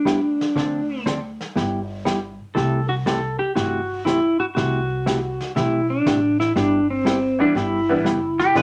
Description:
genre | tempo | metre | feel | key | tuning
country, western swing | 120 BPM | 4/4 | swing 68% on 8ths | G major | A4 = 440 Hz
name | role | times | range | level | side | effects
pedal steel guitar | melody | 0.0-8.6 s | C4 to A4 | -23 LUFS | equal | none
upright bass | bass | 0.0-8.6 s | E1 to D2 | -31 LUFS | equal | none
hollow-body jazz guitar | accompaniment | 0.1-8.6 s | C3 to A4 | -25 LUFS | equal | none
vintage brush drum kit | drums | 0.1-8.6 s | brushed snare drum, hi-hat, snare drum | -35 LUFS | equal | none
honky-tonk upright piano | accompaniment | 7.4-8.6 s | E3 to E4 | -25 LUFS | equal | none
clean lap steel guitar | second line | 8.4-8.6 s | G4 to B4 | -18 LUFS | equal | none
room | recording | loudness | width
moderate studio ambience, RT60 0.5 s | none | -21 LUFS | mono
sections
0.0-8.6 A section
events
none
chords
0.0 G6; 0.6 Dm7; 1.6 G6; 2.6 C6; 6.6 G6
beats
0.07 | 0.56 1.06 1.56 2.06 | 2.56 3.06 3.56 4.06 | 4.56 5.06 5.56 6.05 | 6.55 7.05 7.55 8.05 | 8.55

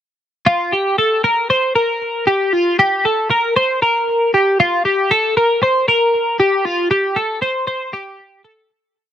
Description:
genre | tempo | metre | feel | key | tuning
indie pop | 116 BPM | 4/4 | straight | unclear | A4 = 440 Hz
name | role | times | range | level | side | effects
twelve-string electric guitar | solo | 0.5-8.7 s | F4 to C5 | -14 LUFS | equal | analog chorus
room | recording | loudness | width
little or no reverb | dry, close 1970s-style studio recording | -14 LUFS | side -10 dB against mid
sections
0.5-8.7 verse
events
fade-out 6.7-8.7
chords
none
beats
| 0.47 0.98 1.50 2.02 | 2.53 3.05 3.56 4.08 | 4.60 5.11 5.62 6.14 | 6.65 7.17 7.68 8.19

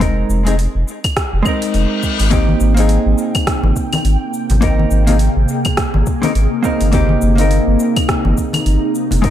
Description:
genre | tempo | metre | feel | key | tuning
sunset chillout | 104 BPM | 4/4 | swing 58% on 16ths | Ab major | A4 = 440 Hz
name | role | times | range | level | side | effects
vintage hollow-body jazz guitar | accompaniment | 0.0-9.3 s | Ab3 to Bb4 | -18 LUFS | moving between left 5 dB and right 3 dB | auto-pan, ping-pong delay
round analog bass | bass | 0.0-9.3 s | F1 to Ab1 | -14 LUFS | equal | none
electronic kick drum | drums | 0.0-9.3 s | none | -20 LUFS | equal | none
smooth R&B drum kit | drums | 0.0-9.3 s | claves, hi-hat, rim click, shaker | -22 LUFS | equal | none
reverse cymbal | sound effects | 1.5-2.3 s | none | -25 LUFS | left 6 dB | none
ethereal airy pad | sustained chords | 3.0-9.3 s | C3 to G5 | -21 LUFS | equal | ensemble chorus, built-in reverb, phaser
congas | percussion | 2.5-9.2 s | none | -23 LUFS | left 2 dB | none
room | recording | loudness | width
light reverb | none | -13 LUFS | side -11 dB against mid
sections
0.0-9.3 A section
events
reverse cymbal 1.5-2.3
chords
0.0 Fm7; 2.3 Abmaj9; 6.9 Cm7/G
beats
| 0.01 0.59 1.16 1.74 | 2.32 2.90 3.47 4.05 | 4.63 5.20 5.78 6.36 | 6.93 7.51 8.09 8.66 | 9.24

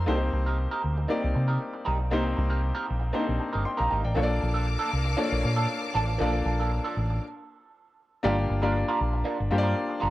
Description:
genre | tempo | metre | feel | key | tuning
disco | 118 BPM | 4/4 | straight | unclear | A4 = 442 Hz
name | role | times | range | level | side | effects
warm grand piano | accompaniment | 0.0-10.1 s | Bb3 to C6 | -29 LUFS | left 2 dB | none
clear studio string section | sustained chords | 0.0-0.1, 4.2-7.2 s | Bb3 to D6 | -35 LUFS | left 3 dB | none
hollow-body short-scale fingered electric bass | bass | 0.0-10.1 s | F#1 to C3 | -26 LUFS | equal | none
electric guitar at the edge of break-up | accompaniment | 0.1-10.1 s | F3 to Bb4 | -31 LUFS | right 3 dB | wah, spring reverb
room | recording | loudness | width
little or no reverb | none | -24 LUFS | side -16 dB against mid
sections
0.1-8.2 A section; 8.2-10.1 B section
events
stop 7.2-8.2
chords
0.1 Cm7; 4.2 Bbmaj7; 8.2 Gm7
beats
| 0.07 0.58 1.09 1.60 | 2.12 2.63 3.14 3.65 | 4.16 4.67 5.18 5.69 | 6.20 6.71 7.22 7.73 | 8.24 8.75 9.26 9.77

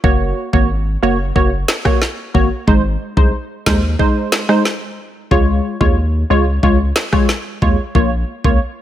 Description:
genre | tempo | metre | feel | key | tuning
dancehall | 91 BPM | 4/4 | straight | unclear | A4 = 440 Hz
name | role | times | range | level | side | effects
wavetable chord stab | accompaniment | 0.0-8.6 s | Ab3 to Db5 | -17 LUFS | equal | sidechain pumping
punchy sub bass | bass | 0.0-8.6 s | Gb1 to Eb2 | -17 LUFS | equal | none
island pop drum kit | drums | 0.0-8.6 s | kick drum, rim click, snare drum | -16 LUFS | equal | none
room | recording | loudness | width
light reverb | none | -13 LUFS | side -12 dB against mid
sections
0.0-8.8 A section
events
none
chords
0.0 Gb; 2.7 Ab; 5.3 Db; 8.0 Bbm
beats
| 0.04 0.70 1.36 2.02 | 2.68 3.33 3.99 4.65 | 5.31 5.97 6.63 7.29 | 7.95

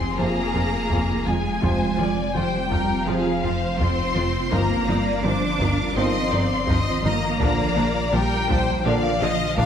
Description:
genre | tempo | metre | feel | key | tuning
cinematic, hybrid orchestral and electronic film score | 83 BPM | 4/4 | straight | F dorian | A4 = 439 Hz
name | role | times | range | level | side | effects
rich symphonic violin section | melody | 0.0-9.7 s | F5 to D6 | -27 LUFS | left 4 dB | none
rich studio violin section | second line | 0.0-9.7 s | Ab4 to F5 | -28 LUFS | left 3 dB | none
ethereal airy pad | sustained chords | 0.0-9.7 s | D3 to F5 | -30 LUFS | equal | ensemble chorus, built-in reverb, phaser
rubbery square bass | riff | 0.0-9.7 s | F2 to Bb3 | -28 LUFS | left 2 dB | none
clear symphonic cello section | bass | 0.0-9.7 s | F3 to D4 | -28 LUFS | right 3 dB | none
dark detuned saw bass | bass | 0.0-9.7 s | F1 to Bb1 | -30 LUFS | equal | none
impact | sound effects | 0.0-1.6 s | none | barely audible | none | none
rich symphonic viola section | accompaniment | 0.2-9.7 s | D3 to F4 | -32 LUFS | equal | none
clear trombone section | sustained chords | 0.2-9.1 s | C3 to F3 | -32 LUFS | right 2 dB | none
dark French horn section | sustained chords | 0.2-9.1 s | Bb3 to F4 | -34 LUFS | left 2 dB | none
rich symphonic double bass section | bass | 0.2-9.7 s | G1 to F2 | -30 LUFS | right 3 dB | none
taiko ensemble | drums | 0.9-9.7 s | none | -29 LUFS | equal | none
room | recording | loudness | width
moderate concert hall reverb, RT60 2.0 s | none | -19 LUFS | side -8 dB against mid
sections
0.0-9.7 A section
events
impact 0.0-1.6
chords
0.0 Fm; 4.5 Ebadd9/G; 7.4 Bb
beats
0.18 0.91 | 1.63 2.35 3.08 3.80 | 4.52 5.24 5.97 6.69 | 7.41 8.13 8.86 9.58

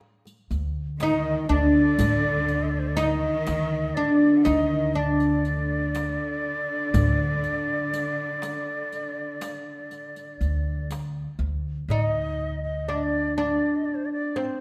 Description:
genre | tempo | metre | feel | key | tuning
Turkish makam ensemble | 121 BPM (eighths) | 10/8 | straight | unclear | A4 = 440 Hz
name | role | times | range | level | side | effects
darbuka | percussion | 0.0-14.6 s | none | -32 LUFS | equal | none
riq | percussion | 0.3-11.1 s | none | -37 LUFS | equal | none
upright bass | bass | 0.5-13.6 s | D2 | -30 LUFS | equal | none
oud | melody | 1.0-14.6 s | C4 to Eb4 | -26 LUFS | equal | none
breathy bright ney | second line | 1.0-14.6 s | C5 to F#5 | -31 LUFS | equal | none
warm studio cello section | second line | 1.0-10.9 s | D3 to Eb3 | -35 LUFS | equal | none
room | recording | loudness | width
moderate concert hall reverb, RT60 1.8 s | none | -25 LUFS | mono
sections
0.0-11.9 A section; 11.9-14.6 B section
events
none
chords
none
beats
0.02 0.51 1.01 1.50 | 2.00 2.49 2.98 3.48 3.97 4.47 4.96 5.46 5.95 6.45 | 6.94 7.44 7.93 8.43 8.92 9.42 9.91 10.41 10.90 11.40 | 11.89 12.39 12.88 13.38 13.87 14.37

